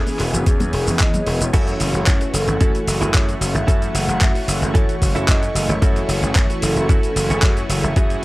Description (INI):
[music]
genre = nu-disco, nu disco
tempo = 112 BPM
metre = 4/4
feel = straight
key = F# minor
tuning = A4 = 440 Hz
[part]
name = vibraphone with soft mallets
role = melody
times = 0.0-8.2 s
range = F#4 to F#5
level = -26 LUFS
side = left 1 dB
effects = none
[part]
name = warm analog pad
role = accompaniment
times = 0.0-8.2 s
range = E3 to B4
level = -26 LUFS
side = equal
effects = chorus, sidechain pumping
[part]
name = lush unison pad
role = sustained chords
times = 0.0-8.2 s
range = A3 to C#6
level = -31 LUFS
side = right 2 dB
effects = chorus, sidechain pumping
[part]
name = gritty slap bass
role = bass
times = 0.0-8.2 s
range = E1 to F#2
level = -22 LUFS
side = equal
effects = overdrive, tube saturation
[part]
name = dusty soul sampler-style drum kit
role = drums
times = 0.1-8.2 s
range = crash cymbal, handclaps, hi-hat, shaker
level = -24 LUFS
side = equal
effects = overdrive
[part]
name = bongos and congas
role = percussion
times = 0.1-1.4 s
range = none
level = -26 LUFS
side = left 1 dB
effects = none
[part]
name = electronic kick drum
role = drums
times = 0.5-8.1 s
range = none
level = -17 LUFS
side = equal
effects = overdrive
[part]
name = direct-recorded clean electric guitar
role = riff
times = 1.5-8.2 s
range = C#4 to A4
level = -26 LUFS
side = right 2 dB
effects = wide subtle chorus
[sound]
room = little or no reverb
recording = dry, gritty hardware recording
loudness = -15 LUFS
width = side -19 dB against mid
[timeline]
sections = 0.0-1.5 A section; 1.5-8.2 B section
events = drop 1.5-8.2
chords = 0.0 E6; 1.5 F#m7